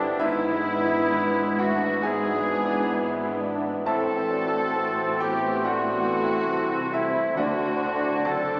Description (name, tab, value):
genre	classical, romantic movement for piano and orchestra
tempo	63-71 BPM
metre	4/4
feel	rubato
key	unclear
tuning	A4 = 440 Hz
part	clear concert grand piano	melody	0.0-8.6 s	D2 to A5	-27 LUFS	equal	none
part	muted symphonic violin section	melody	0.0-8.6 s	D4 to A4	-36 LUFS	equal	none
part	clear oboe	second line	0.0-8.6 s	D4 to A4	-32 LUFS	equal	none
part	muted studio violin section	second line	0.0-8.6 s	D4 to A4	-33 LUFS	equal	none
part	warm clarinet	second line	0.0-8.6 s	D4 to A4	-31 LUFS	equal	none
part	mellow bassoon	accompaniment	0.0-8.6 s	B3 to G4	-32 LUFS	equal	none
part	muted studio viola section	accompaniment	0.0-8.6 s	G#3 to F#4	-33 LUFS	equal	none
part	clear trombone section	sustained chords	0.0-8.6 s	D3 to C4	-31 LUFS	equal	none
part	dark French horn section	sustained chords	0.0-8.6 s	C4 to B4	-33 LUFS	equal	none
part	muted studio cello section	bass	0.0-8.6 s	F#2 to D3	-35 LUFS	equal	none
part	muted studio double bass section	bass	0.0-8.6 s	F#1 to D2	-39 LUFS	equal	none
part	timpani	percussion	7.4-8.6 s	D3	-34 LUFS	equal	none
room	wet scoring stage reverb, RT60 2.0 s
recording	heard from further back in the room, small speaker sound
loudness	-22 LUFS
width	side -37 dB against mid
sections	0.0-8.6 A section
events	none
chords	0.2 E7/G#; 3.9 Am; 7.4 D7